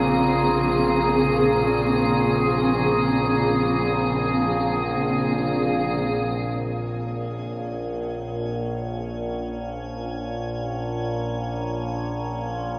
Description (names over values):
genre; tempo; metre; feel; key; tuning
dark ambient drone; free time; none; none; Bb minor; A4 = 441 Hz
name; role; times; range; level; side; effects
warm studio cello section; sustained chords; 0.0-6.6 s; Db3 to C4; -27 LUFS; equal; shimmer reverb
overtone-sweeping drone; drone; 0.0-12.8 s; Bb1 to Bb2; -28 LUFS; equal; chorus, built-in reverb
icy glass pad; texture; 0.0-12.8 s; Db4 to Db5; -29 LUFS; equal; chorus, built-in reverb, shimmer reverb
room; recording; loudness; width
wet huge ambient reverb, RT60 7.9 s; in a vast, echoing space; -24 LUFS; mono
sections
0.0-6.6 A section; 6.6-12.8 B section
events
none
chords
0.0 Bbm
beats
free time